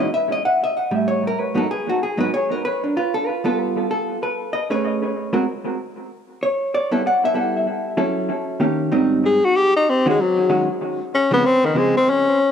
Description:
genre	jazz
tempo	190 BPM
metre	4/4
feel	swing 63% on 8ths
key	Ab major from 8.9 s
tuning	A4 = 437 Hz
part	vintage hollow-body jazz guitar	accompaniment	0.0-11.9 s	G#2 to F#5	-20 LUFS	right 1 dB	analog delay
part	warm tenor saxophone	melody	9.3-12.5 s	Eb3 to Ab4	-16 LUFS	left 2 dB	analog delay
room	moderate echo chamber reverb, RT60 1.9 s, small room ambience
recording	echo-heavy mix, cassette tape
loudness	-17 LUFS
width	side -8 dB against mid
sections	0.0-8.9 A section; 8.9-12.5 A section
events	tenor saxophone solo 8.9-12.5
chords	0.1 N.C.; 0.7 A7; 1.4 G#m7; 2.6 G9; 3.9 Amaj9; 5.1 G#9; 6.4 G69; 7.7 F#m7; 8.3 D#7; 8.9 Abmaj7; 10.2 Ebm7; 10.8 Ab

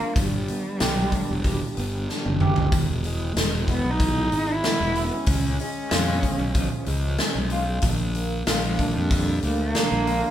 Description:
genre	quiet-loud alternative rock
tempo	94 BPM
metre	4/4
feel	straight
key	unclear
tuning	A4 = 440 Hz
part	dark cello	melody	0.0-10.3 s	E#3 to E4	-28 LUFS	right 1 dB	none
part	electric guitar through a small old amp	arpeggios	0.0-10.3 s	E2 to G4	-29 LUFS	right 1 dB	tremolo
part	fuzz fingered electric bass	bass	0.2-10.2 s	E1 to E#2	-26 LUFS	equal	overdrive
part	big rock drum kit	drums	0.2-10.2 s	hi-hat, kick drum, snare drum, toms	-25 LUFS	equal	none
room	light reverb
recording	band playing live in one room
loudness	-21 LUFS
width	side -11 dB against mid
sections	0.0-10.3 A section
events	drum fill 2.1-2.7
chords	0.2 G; 2.7 E; 5.3 C#; 7.8 A#

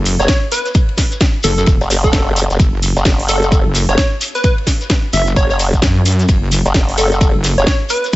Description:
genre	bass house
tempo	130 BPM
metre	4/4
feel	swing 60% on 16ths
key	F# minor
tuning	A4 = 440 Hz
part	wobble bass	bass	0.0-7.6 s	E1 to F#2	-15 LUFS	equal	chorus, tube saturation, sidechain pumping
part	damped 70s drum kit	drums	0.1-8.2 s	ride cymbal, snare drum	-30 LUFS	left 3 dB	none
part	house drum kit	drums	0.1-8.2 s	hi-hat, snare drum	-20 LUFS	right 1 dB	none
part	shekere	percussion	0.1-8.2 s	none	-23 LUFS	left 2 dB	none
part	plucky unison lead	melody	0.2-8.1 s	A4 to E5	-19 LUFS	equal	cassette tape, digital delay
part	formant-sweep wobble bass	bass	0.2-7.7 s	F#1	-15 LUFS	equal	chorus, overdrive, sidechain pumping
part	electronic kick drum	drums	0.3-8.2 s	none	-14 LUFS	equal	none
room	digital ambience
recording	nothing above 7.9 kHz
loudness	-11 LUFS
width	side -17 dB against mid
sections	0.0-8.2 A section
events	none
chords	0.0 F#m

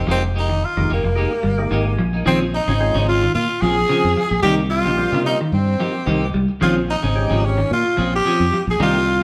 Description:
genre	afrobeat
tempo	110 BPM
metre	4/4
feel	swing 54% on 16ths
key	Bb dorian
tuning	A4 = 441 Hz
part	raspy tenor saxophone	melody	0.0-9.2 s	Bb3 to Ab4	-24 LUFS	equal	none
part	clean electric guitar	stabs	0.0-9.2 s	F3 to Ab4	-27 LUFS	equal	none
part	fingered electric bass	bass	0.0-9.2 s	F1 to C3	-23 LUFS	equal	none
part	clean electric guitar	arpeggios	0.1-9.0 s	Db3 to G3	-27 LUFS	equal	none
part	percussive tonewheel organ	accompaniment	0.8-9.0 s	G3 to Ab5	-30 LUFS	equal	slow rotary speaker, overdrive
part	raspy alto saxophone	second line	2.3-9.2 s	C4 to Ab4	-27 LUFS	equal	none
room	wet stone room reverb, RT60 1.1 s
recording	band playing live in one room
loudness	-18 LUFS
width	mono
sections	0.0-2.3 A section; 2.3-9.2 B section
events	tonewheel organ fill 1.4-2.3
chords	0.0 Fm11; 2.3 Bbm9; 4.4 Cm7; 6.6 Bbm9

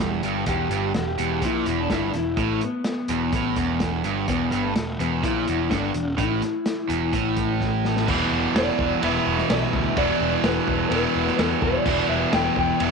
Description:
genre	classic rock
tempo	126 BPM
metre	4/4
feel	straight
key	E minor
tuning	A4 = 440 Hz
part	electric slide guitar	melody	0.0-12.9 s	G3 to G5	-26 LUFS	left 2 dB	slapback echo
part	cranked stack guitar	riff	0.0-12.9 s	E2 to E3	-25 LUFS	right 12 dB	overdrive
part	crunchy overdriven guitar	riff	0.0-12.9 s	E2 to E4	-28 LUFS	left 12 dB	none
part	fuzz picked electric bass	bass	0.0-12.9 s	E1 to E2	-29 LUFS	equal	overdrive
part	vintage drum kit	drums	0.2-12.9 s	crash cymbal, hi-hat, kick drum, ride cymbal, snare drum	-28 LUFS	equal	none
room	moderate spring reverb, RT60 1.3 s, studio reverb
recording	1960s-style stereo with parts hard left and right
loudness	-20 LUFS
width	side -4 dB against mid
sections	0.0-8.1 A section; 8.1-12.9 B section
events	drum fill 7.6-8.1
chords	0.0 Em; 8.1 Em7

